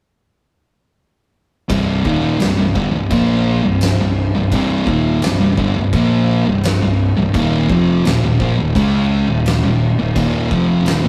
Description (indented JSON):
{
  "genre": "stoner and doom metal",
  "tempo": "85 BPM",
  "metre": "4/4",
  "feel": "straight",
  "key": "C phrygian",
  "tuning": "A4 = 440 Hz",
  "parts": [
    { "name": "thick fuzz guitar", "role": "riff", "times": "1.7-11.1 s", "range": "C2 to Db4", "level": "-19 LUFS", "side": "equal", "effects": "distortion" },
    { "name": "thick fuzz guitar", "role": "riff", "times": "1.7-11.1 s", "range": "C2 to Db4", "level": "-20 LUFS", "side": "equal", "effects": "distortion" },
    { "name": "fuzz fingered electric bass", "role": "bass", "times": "1.7-11.1 s", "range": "C1 to Db2", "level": "-25 LUFS", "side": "equal", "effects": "overdrive" },
    { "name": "oversized low-tuned drum kit", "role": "drums", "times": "1.7-11.0 s", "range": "crash cymbal, kick drum, snare drum", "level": "-24 LUFS", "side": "equal", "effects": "none" }
  ],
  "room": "moderate small room reverb, RT60 0.6 s",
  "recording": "rough rehearsal-room recording, tube saturation",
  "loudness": "-16 LUFS",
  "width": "mono",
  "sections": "1.7-11.1 A section",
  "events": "none",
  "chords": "1.7 Cm; 7.3 Eb5",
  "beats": "| 1.70 2.40 3.11 3.81 | 4.52 5.23 5.93 6.64 | 7.34 8.05 8.75 9.46 | 10.16 10.86"
}